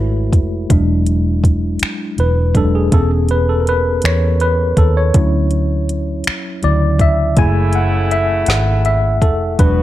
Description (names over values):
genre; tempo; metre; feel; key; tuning
slow six-eight R&B; 54 BPM (dotted quarters); 6/8; straight; F# minor; A4 = 440 Hz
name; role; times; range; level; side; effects
tine electric piano; accompaniment; 0.0-9.8 s; C#3 to G#5; -17 LUFS; left 1 dB; overdrive, fast stereo tremolo
vintage muted fingered electric bass; bass; 0.0-9.8 s; E1 to E2; -16 LUFS; equal; none
smooth R&B drum kit; drums; 0.3-9.8 s; finger snaps, hi-hat, kick drum, snare drum; -15 LUFS; equal; none
warm horn section; stabs; 7.4-9.8 s; C#3 to F#4; -24 LUFS; right 2 dB; none
room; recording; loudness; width
digital ambience; none; -12 LUFS; side -14 dB against mid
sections
0.0-9.8 A section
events
tine electric piano solo 0.0-9.8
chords
0.0 F#m9; 0.7 E9; 2.9 E6; 5.1 Dmaj9; 7.4 F#m9